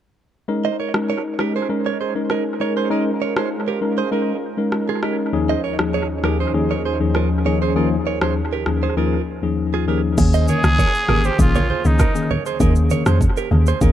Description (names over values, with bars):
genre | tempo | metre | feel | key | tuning
afrobeats | 99 BPM | 4/4 | straight | unclear | A4 = 444 Hz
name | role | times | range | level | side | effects
tine electric piano | accompaniment | 0.5-13.9 s | Eb2 to Bb4 | -21 LUFS | left 3 dB | dub echo
warm analog pad | sustained chords | 0.5-10.1 s | Eb2 to Bb4 | -26 LUFS | equal | chorus
direct-recorded clean electric guitar | riff | 0.6-13.9 s | Eb4 to Eb5 | -25 LUFS | right 9 dB | dub echo
afro-pop drum kit | drums | 0.9-13.9 s | crash cymbal, kick drum, rim click, shaker | -22 LUFS | equal | dub echo
woody log drum bass | bass | 10.2-13.9 s | Ab1 to F2 | -17 LUFS | equal | none
congas | percussion | 10.2-13.9 s | none | -28 LUFS | right 1 dB | none
growling trumpet | melody | 10.5-12.3 s | Eb4 to Ab4 | -22 LUFS | equal | dub echo
room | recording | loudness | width
light reverb | echo-heavy mix | -17 LUFS | side -11 dB against mid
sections
0.5-10.2 A section; 10.2-13.9 B section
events
none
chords
0.5 Eb7sus4; 5.3 Dbadd9/Eb; 10.2 Eb7sus4